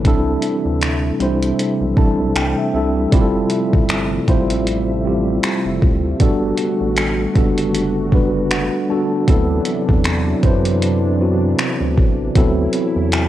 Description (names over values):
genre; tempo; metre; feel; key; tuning
contemporary R&B; 78 BPM; 4/4; swing 58% on 16ths; G major; A4 = 439 Hz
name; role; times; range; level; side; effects
mellow tine electric piano; accompaniment; 0.0-13.3 s; F#3 to A5; -18 LUFS; right 1 dB; medium stereo tremolo, cassette tape
warm analog pad; sustained chords; 0.0-13.3 s; C3 to E5; -25 LUFS; left 1 dB; wide subtle chorus, cassette tape
rubbery square bass; bass; 0.0-13.3 s; F1 to F#2; -22 LUFS; equal; none
detuned 8-bit digital drum machine; drums; 0.0-13.3 s; finger snaps, hi-hat, kick drum; -18 LUFS; equal; cassette tape
room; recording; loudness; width
light reverb, digital ambience; home recording on cassette; -15 LUFS; side -13 dB against mid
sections
0.0-13.3 A section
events
tine electric piano fill 1.6-3.1, 8.1-9.3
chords
0.0 C6; 3.1 Fmaj9; 6.2 Gmaj9; 9.3 D13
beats
| 0.05 0.82 1.59 2.36 | 3.12 3.89 4.66 5.43 | 6.20 6.97 7.74 8.51 | 9.28 10.05 10.82 11.59 | 12.36 13.12